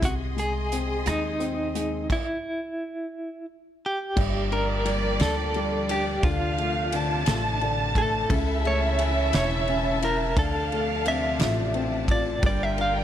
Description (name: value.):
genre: six-eight pop ballad.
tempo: 58 BPM (dotted quarters).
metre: 6/8.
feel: straight.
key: D minor from 4.2 s.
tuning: A4 = 440 Hz.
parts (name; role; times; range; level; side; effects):
direct-recorded clean electric guitar; melody; 0.0-13.0 s; D#4 to F5; -28 LUFS; right 1 dB; tremolo.
warm upright piano; accompaniment; 0.0-13.0 s; B#2 to F4; -31 LUFS; left 6 dB; none.
clear symphonic string section; sustained chords; 0.0-13.0 s; C3 to D#6; -34 LUFS; equal; none.
upright bass; bass; 0.0-13.0 s; E1 to D#2; -29 LUFS; equal; none.
loose indie drum kit; drums; 0.0-12.9 s; crash cymbal, hi-hat, kick drum, ride cymbal, rim click, snare drum; -29 LUFS; right 1 dB; none.
dark studio violin section; second line; 4.2-13.0 s; D5 to A5; -30 LUFS; right 3 dB; none.
room: light reverb.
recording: none.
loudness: -23 LUFS.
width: side -10 dB against mid.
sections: 0.0-4.2 A section; 4.2-13.0 B section.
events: stop 2.1-4.2.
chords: 0.0 G#/B#; 2.1 N.C.; 4.2 Gm7; 6.2 Dm7; 8.3 A/C#; 10.4 Dm7; 12.4 Gm7.